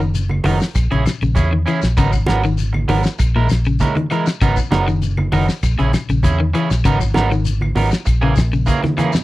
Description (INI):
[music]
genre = afrobeat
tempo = 98 BPM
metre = 4/4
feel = straight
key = G# minor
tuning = A4 = 440 Hz
[part]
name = electric guitar at the edge of break-up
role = arpeggios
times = 0.0-9.2 s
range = A#2 to E3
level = -21 LUFS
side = left 3 dB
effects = tape echo
[part]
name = electric guitar at the edge of break-up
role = stabs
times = 0.0-9.2 s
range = E3 to A#4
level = -21 LUFS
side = right 5 dB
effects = none
[part]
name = vintage muted fingered electric bass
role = bass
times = 0.0-8.7 s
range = F#1 to E2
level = -18 LUFS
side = equal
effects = none
[part]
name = damped 70s drum kit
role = drums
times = 0.1-9.2 s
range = hi-hat, kick drum, snare drum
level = -19 LUFS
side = equal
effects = none
[part]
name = congas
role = percussion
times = 0.1-9.2 s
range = none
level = -23 LUFS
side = right 2 dB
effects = none
[part]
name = shekere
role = percussion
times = 0.1-9.2 s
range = none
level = -30 LUFS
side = left 6 dB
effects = none
[part]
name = claves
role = percussion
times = 0.3-9.1 s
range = none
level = -34 LUFS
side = left 4 dB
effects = none
[sound]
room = little or no reverb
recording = dry, close 1970s-style studio recording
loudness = -14 LUFS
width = side -17 dB against mid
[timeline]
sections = 0.0-9.2 A section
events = drum fill 8.8-9.2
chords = 0.0 G#m9 (rootless); 0.8 A#m7b5; 2.0 G#m9; 3.2 A#m7b5; 4.4 G#m9 (rootless); 5.6 A#m7b5; 6.9 G#m9; 8.1 A#m7b5